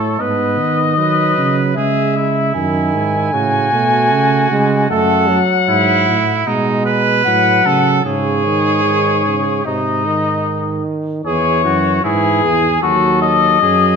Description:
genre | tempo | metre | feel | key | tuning
classical, imitative canzona for brass ensemble | 76 BPM | 4/4 | straight | C# minor from 4.9 s | A4 = 438 Hz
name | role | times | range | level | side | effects
mellow cornet | melody | 0.0-14.0 s | F#4 to G#5 | -16 LUFS | left 6 dB | none
clear trumpet | second line | 0.0-14.0 s | D#4 to B4 | -19 LUFS | right 4 dB | none
mellow trombone | accompaniment | 0.0-14.0 s | B#2 to B3 | -20 LUFS | right 2 dB | none
mellow tuba | bass | 0.0-14.0 s | D#2 to D#3 | -19 LUFS | right 4 dB | none
room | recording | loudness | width
moderate recital hall reverb, RT60 1.4 s | none | -12 LUFS | side -6 dB against mid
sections
0.0-11.2 A section; 11.2-14.0 B section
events
none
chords
0.2 G#m; 1.8 C#m; 3.3 F#m/A; 4.9 D#dim/F# (rootless); 8.1 G#sus4; 9.7 G#; 11.2 C#m/E; 12.8 D#dim

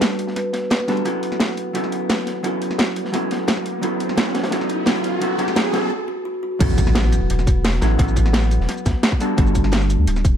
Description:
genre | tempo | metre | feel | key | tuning
liquid drum and bass | 173 BPM | 4/4 | straight | A mixolydian | A4 = 440 Hz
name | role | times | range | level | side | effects
vintage hollow-body jazz guitar | accompaniment | 0.0-10.4 s | F#3 to A4 | -24 LUFS | equal | tape echo
kalimba | arpeggios | 0.0-6.6 s | F#4 to B4 | -28 LUFS | equal | low-pass filter, tape echo
crunchy breakbeat drum kit | drums | 0.0-10.3 s | hi-hat, snare drum | -27 LUFS | equal | high-pass filter on hats, high-pass filter on snare, high-pass filter on room
garage drum kit | drums | 0.0-10.3 s | crash cymbal, hi-hat, shaker, snare drum | -23 LUFS | equal | none
riser and impact | sound effects | 3.0-8.0 s | none | -27 LUFS | right 1 dB | none
saturated sub bass | bass | 6.6-10.4 s | D1 to D2 | -18 LUFS | equal | none
electronic kick drum | drums | 6.6-10.3 s | none | -18 LUFS | equal | none
room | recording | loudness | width
light reverb, studio ambience | none | -17 LUFS | side -9 dB against mid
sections
0.0-6.6 A section; 6.6-10.4 B section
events
build-up 0.0-6.6; filter sweep on kalimba 0.0-6.6; riser 3.0-5.9; break 5.9-6.6; drop 6.6-10.4; impact 6.6-8.0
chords
0.0 Gmaj9; 1.1 A69/F#; 6.6 A6; 9.2 Gmaj9

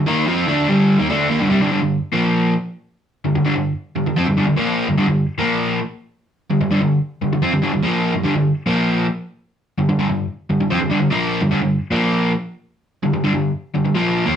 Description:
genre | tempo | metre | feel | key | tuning
rock | 147 BPM | 4/4 | straight | G minor | A4 = 439 Hz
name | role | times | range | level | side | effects
overdriven semi-hollow guitar | solo | 0.0-14.4 s | G2 to F4 | -16 LUFS | equal | none
room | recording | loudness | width
wet studio reverb, RT60 0.6 s | band playing live in one room | -16 LUFS | side -8 dB against mid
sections
0.0-1.7 A section; 1.7-14.4 B section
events
none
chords
0.0 Gm; 1.7 G5; 2.1 Bb5; 3.2 Gm; 5.4 Bb5; 6.5 Gm; 8.7 Bb5; 9.8 Gm; 11.9 Bb5; 13.0 Gm

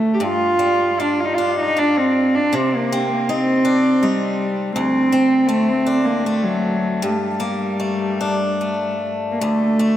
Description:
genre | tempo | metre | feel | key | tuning
celtic folk, Celtic slow air | 73-82 BPM | 3/4 | rubato | G minor | A4 = 441 Hz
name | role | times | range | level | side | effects
warm cello | melody | 0.0-10.0 s | F#3 to G4 | -17 LUFS | equal | diffuse ambient delay
picked swing-style acoustic guitar | accompaniment | 0.0-10.0 s | D2 to F#4 | -22 LUFS | left 1 dB | none
room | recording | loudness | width
wet plate reverb, RT60 3.3 s | dreamy mix soaked in reverb | -16 LUFS | side -11 dB against mid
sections
0.0-9.4 A section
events
none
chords
0.2 G5; 2.5 Cmadd9; 4.8 D5; 7.0 Gmadd9; 9.4 D5

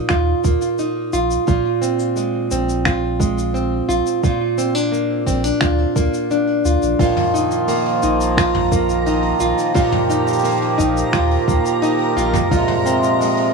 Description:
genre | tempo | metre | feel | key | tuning
folktronica | 87 BPM | 4/4 | straight | Bb mixolydian | A4 = 440 Hz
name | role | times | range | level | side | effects
nylon-string guitar | arpeggios | 0.0-13.5 s | Bb2 to F4 | -18 LUFS | right 1 dB | digital delay
warm sub bass | bass | 0.1-12.6 s | Bb1 to Eb2 | -22 LUFS | equal | none
electronic kick drum | drums | 0.1-12.7 s | none | -20 LUFS | equal | none
soft brush drum kit | drums | 0.1-13.5 s | finger snaps, hi-hat, shaker, toms | -25 LUFS | left 2 dB | none
hand-pumped harmonium | sustained chords | 7.0-13.5 s | C3 to G4 | -20 LUFS | right 1 dB | none
backwards swelling texture | texture | 8.3-13.5 s | Bb4 to Bb5 | -25 LUFS | right 1 dB | built-in reverb
room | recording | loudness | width
moderate studio reverb, RT60 0.6 s | none | -15 LUFS | side -4 dB against mid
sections
0.0-13.5 A section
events
none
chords
0.0 Bbsus4; 1.5 Fm/Bb; 4.2 Bbadd9; 7.0 Bbsus4; 12.5 Fm/Bb

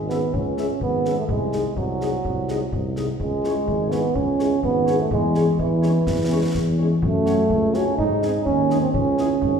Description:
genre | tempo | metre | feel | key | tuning
military-style march for wind band | 126 BPM | 2/4 | straight | C# minor | A4 = 440 Hz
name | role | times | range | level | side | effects
clear euphonium | second line | 0.0-9.6 s | E3 to D#4 | -22 LUFS | right 3 dB | none
mellow tuba | bass | 0.0-9.6 s | G#1 to G#2 | -23 LUFS | equal | none
clear trumpet section | melody | 0.1-9.3 s | G#4 to E5 | -44 LUFS | left 1 dB | none
mellow French horn section | accompaniment | 0.1-9.3 s | G#3 to G#4 | -29 LUFS | left 5 dB | none
concert snare drum and concert bass drum | drums | 0.1-9.6 s | none | -30 LUFS | left 2 dB | none
room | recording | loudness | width
wet scoring stage reverb, RT60 1.9 s | recorded in a church or concert hall | -19 LUFS | side -6 dB against mid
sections
0.0-9.6 A section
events
none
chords
0.0 C#5; 1.3 G#7/B#; 3.2 C#m; 5.1 C#m/E; 7.0 F#m; 8.0 G#; 8.9 C#m

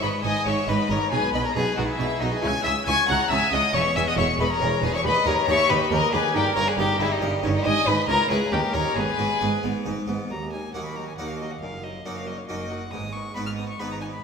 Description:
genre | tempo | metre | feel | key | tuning
classical, baroque-style concerto movement with solo episodes | 138 BPM | 3/4 | straight | G# minor, Eb minor from 10.3 s | A4 = 440 Hz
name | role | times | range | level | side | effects
rich violin | melody | 0.0-14.2 s | C#4 to F6 | -26 LUFS | left 2 dB | none
warm chamber violin section | melody | 0.0-14.1 s | Bb4 to G#6 | -27 LUFS | left 4 dB | none
rich chamber violin section | second line | 0.0-14.1 s | Eb4 to C#6 | -30 LUFS | left 4 dB | none
dark chamber viola section | accompaniment | 0.0-14.1 s | Gb3 to G#4 | -34 LUFS | right 1 dB | none
harpsichord | accompaniment | 0.0-14.1 s | C#2 to D#5 | -32 LUFS | right 1 dB | none
dark studio double bass section | bass | 0.0-14.2 s | E1 to D#2 | -30 LUFS | right 4 dB | none
warm chamber cello section | bass | 0.0-14.2 s | C#2 to C#3 | -31 LUFS | right 3 dB | none
room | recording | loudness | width
wet recital hall reverb, RT60 1.7 s | minimal, uncompressed stereo recording | -21 LUFS | side -6 dB against mid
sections
0.0-10.3 A section; 10.3-14.2 B section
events
none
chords
0.0 G#5; 1.1 G#m/B; 2.4 C#m; 3.7 C#m/E; 5.0 D#; 6.3 D#/G; 7.7 G#m; 8.1 C#m; 8.5 D#7; 9.0 G#m; 10.3 Ebm; 11.6 Ebm/Gb; 12.9 Abm

